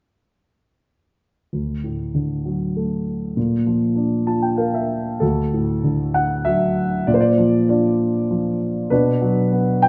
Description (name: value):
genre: classical, lyrical solo piano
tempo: 98 BPM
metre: 3/4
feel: rubato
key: unclear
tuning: A4 = 440 Hz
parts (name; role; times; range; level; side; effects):
- dark grand piano; solo; 1.5-9.9 s; D2 to A5; -20 LUFS; equal; none
room: wet recital hall reverb, RT60 1.5 s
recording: nothing above 7.5 kHz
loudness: -20 LUFS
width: mono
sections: 1.5-5.2 A section; 5.2-9.9 B section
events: grand piano fill 4.0-5.2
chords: 1.5 D; 3.4 Bb; 5.2 D; 7.1 Bb; 8.9 Bm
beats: | 1.54 2.16 2.77 | 3.37 3.97 4.59 | 5.22 5.85 6.47 | 7.08 7.70 8.30 | 8.91 9.51